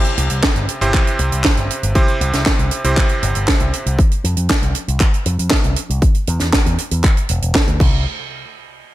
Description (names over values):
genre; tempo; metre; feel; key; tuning
italo disco; 118 BPM; 4/4; straight; C major; A4 = 444 Hz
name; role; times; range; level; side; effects
bright electric grand piano; stabs; 0.0-4.0 s; C3 to C5; -21 LUFS; right 2 dB; tape echo
tight funk drum kit; drums; 0.0-7.9 s; crash cymbal, handclaps, hi-hat, snare drum; -20 LUFS; right 1 dB; gated reverb
picked electric bass with an envelope filter; bass; 0.2-8.0 s; E1 to F2; -19 LUFS; equal; none
electronic kick drum; drums; 0.4-7.9 s; none; -15 LUFS; equal; none
room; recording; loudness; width
small room ambience; none; -14 LUFS; side -15 dB against mid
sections
0.0-8.1 A section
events
none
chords
0.0 C; 4.0 F5; 6.0 N.C.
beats
0.43 0.94 1.45 | 1.95 2.46 2.97 3.48 | 3.99 4.50 5.00 5.51 | 6.02 6.53 7.04 7.55